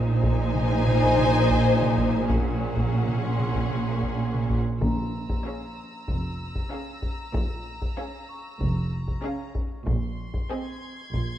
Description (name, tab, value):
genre	cinematic, suspense film score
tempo	95 BPM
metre	4/4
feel	straight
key	Bb minor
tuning	A4 = 439 Hz
part	rich studio violin section	melody	0.0-11.0 s	Eb5 to Ab5	-34 LUFS	left 1 dB	none
part	rich studio violin section	second line	0.0-11.0 s	Ab4 to C5	-30 LUFS	left 5 dB	none
part	rich studio viola section	accompaniment	0.0-11.0 s	C4 to Eb4	-32 LUFS	equal	none
part	dark studio double bass section	bass	0.0-11.4 s	F1 to Bb1	-27 LUFS	right 3 dB	none
part	rich studio cello section	bass	0.0-11.4 s	F2 to Bb2	-28 LUFS	right 1 dB	none
part	solo taiko drums	drums	0.2-11.4 s	none	-30 LUFS	left 1 dB	none
part	vibraphone with soft mallets	texture	1.0-11.4 s	Ab5 to Db6	-37 LUFS	left 1 dB	none
part	timpani	percussion	4.8-5.7 s	Bb2	-31 LUFS	left 2 dB	none
part	clear studio violin section	texture	4.8-11.4 s	Bb5 to Ab6	-41 LUFS	left 2 dB	none
room	moderate scoring stage reverb, RT60 2.0 s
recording	dark, warm production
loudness	-23 LUFS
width	side -11 dB against mid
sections	0.0-11.4 A section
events	none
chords	0.0 Ab/Bb; 2.3 Gbadd9/Bb; 4.8 Bbm7; 9.9 Ab/Bb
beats	0.39 1.03 1.66 | 2.29 2.92 3.55 4.18 | 4.82 5.45 6.08 6.71 | 7.34 7.97 8.61 9.24 | 9.87 10.50 11.13